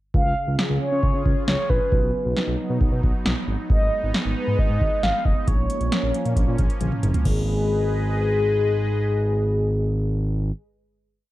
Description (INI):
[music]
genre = synth-pop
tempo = 135 BPM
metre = 4/4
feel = straight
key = G# dorian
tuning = A4 = 441 Hz
[part]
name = mellow horn-like synth lead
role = melody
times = 0.1-10.5 s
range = G#4 to E#5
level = -25 LUFS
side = left 1 dB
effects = chorus, slapback echo
[part]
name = sweeping resonant pad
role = sustained chords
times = 0.1-10.5 s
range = C#3 to D#5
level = -30 LUFS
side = right 1 dB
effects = chorus
[part]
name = smooth synth bass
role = bass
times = 0.1-10.5 s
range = E#1 to C#3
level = -24 LUFS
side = equal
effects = none
[part]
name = electro analog drum machine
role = drums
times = 0.1-7.4 s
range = crash cymbal, hi-hat, kick drum, snare drum, toms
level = -22 LUFS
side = equal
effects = none
[sound]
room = light reverb, digital ambience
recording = dark, warm production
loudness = -20 LUFS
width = side -16 dB against mid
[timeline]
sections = 0.1-7.3 bridge; 7.3-10.8 final chord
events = drum fill 6.8-7.3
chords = 0.1 C#; 1.9 B; 3.7 G#m; 5.5 A#m; 7.3 G#m